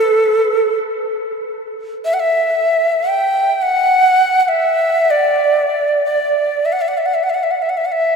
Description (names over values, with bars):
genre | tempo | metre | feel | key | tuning
world meditative, free-time meditation music | free time | none | none | unclear | A4 = 440 Hz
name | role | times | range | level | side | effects
breathy Native American-style cedar flute | solo | 0.0-8.2 s | A4 to G5 | -13 LUFS | right 1 dB | tape echo
room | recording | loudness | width
wet cathedral reverb, RT60 5.6 s | in a vast, echoing space | -13 LUFS | side -5 dB against mid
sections
0.9-8.2 A section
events
none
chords
none